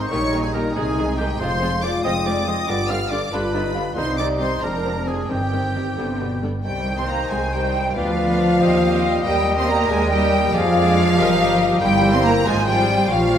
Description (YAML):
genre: quick classical-period movement for symphony orchestra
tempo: 93 BPM (dotted quarters)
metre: 6/8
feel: straight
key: C minor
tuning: A4 = 440 Hz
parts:
  - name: warm symphonic violin section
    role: melody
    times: 0.0-13.4 s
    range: F5 to F6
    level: -26 LUFS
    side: left 3 dB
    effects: none
  - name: large flute ensemble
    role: second line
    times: 0.0-13.4 s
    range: G4 to C6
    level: -26 LUFS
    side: right 1 dB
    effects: none
  - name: warm oboe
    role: second line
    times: 0.0-13.4 s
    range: G4 to G5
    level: -30 LUFS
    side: equal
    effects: none
  - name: warm bassoon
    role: accompaniment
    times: 0.0-13.4 s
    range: Eb3 to F4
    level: -28 LUFS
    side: right 2 dB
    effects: none
  - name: mellow French horn section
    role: sustained chords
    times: 0.0-13.4 s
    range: D3 to F4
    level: -24 LUFS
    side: left 3 dB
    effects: none
  - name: rich chamber double bass section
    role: bass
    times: 0.0-13.4 s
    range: F1 to F2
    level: -26 LUFS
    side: right 1 dB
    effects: none
  - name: warm chamber cello section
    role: bass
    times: 0.0-13.4 s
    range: F2 to C4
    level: -25 LUFS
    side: right 2 dB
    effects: none
  - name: rich chamber violin section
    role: second line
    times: 0.1-13.4 s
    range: B3 to Eb5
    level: -30 LUFS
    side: left 2 dB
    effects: none
  - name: rich studio viola section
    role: accompaniment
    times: 0.1-13.4 s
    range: D3 to G4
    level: -30 LUFS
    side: right 2 dB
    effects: none
  - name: warm clarinet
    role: second line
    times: 6.7-13.4 s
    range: E4 to C5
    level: -28 LUFS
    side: left 1 dB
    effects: none
room: wet scoring stage reverb, RT60 1.7 s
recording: none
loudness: -17 LUFS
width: side -9 dB against mid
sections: 0.0-6.6 A section; 6.6-13.4 B section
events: none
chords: 0.1 Eb7/Bb; 0.8 Ab/C; 1.4 Fm; 2.7 G7; 4.0 Cm; 4.6 Fm; 5.3 Cm/G; 6.0 G; 6.6 Cm; 8.0 Bdim/D; 8.6 Cm/Eb; 9.3 Eb; 10.5 Ddim/F; 11.2 Eb/G; 11.8 C7/G; 12.5 Fm/Ab